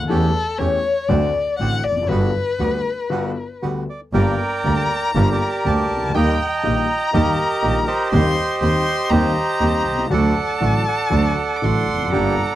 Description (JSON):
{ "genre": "tango", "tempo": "119 BPM", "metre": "4/4", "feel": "rubato", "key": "G major, G harmonic minor from 4.1 s", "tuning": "A4 = 438 Hz", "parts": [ { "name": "warm concert grand piano", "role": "accompaniment", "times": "0.0-12.3 s", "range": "G1 to G4", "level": "-23 LUFS", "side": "left 3 dB", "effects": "none" }, { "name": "clear double bass", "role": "bass", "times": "0.0-12.4 s", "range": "F1 to E2", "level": "-21 LUFS", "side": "right 2 dB", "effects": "none" }, { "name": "dark violin", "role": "second line", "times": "0.1-12.6 s", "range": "A4 to D6", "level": "-24 LUFS", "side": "left 4 dB", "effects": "none" }, { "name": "bandoneon", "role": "stabs", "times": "0.1-12.3 s", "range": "G3 to G4", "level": "-27 LUFS", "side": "right 6 dB", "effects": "tape echo" }, { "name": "bandoneon", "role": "melody", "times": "3.9-12.6 s", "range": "G4 to Bb5", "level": "-21 LUFS", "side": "right 3 dB", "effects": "none" } ], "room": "little or no reverb", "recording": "dry, close 1970s-style studio recording", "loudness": "-17 LUFS", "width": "side -13 dB against mid", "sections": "0.0-4.1 A section; 4.1-12.6 B section", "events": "violin solo 0.0-4.1; break 3.1-4.1", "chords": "0.1 A7/E; 1.1 D7; 2.1 Gmaj7; 4.1 Gm; 6.1 Eb; 8.1 Cm/Eb; 10.1 D" }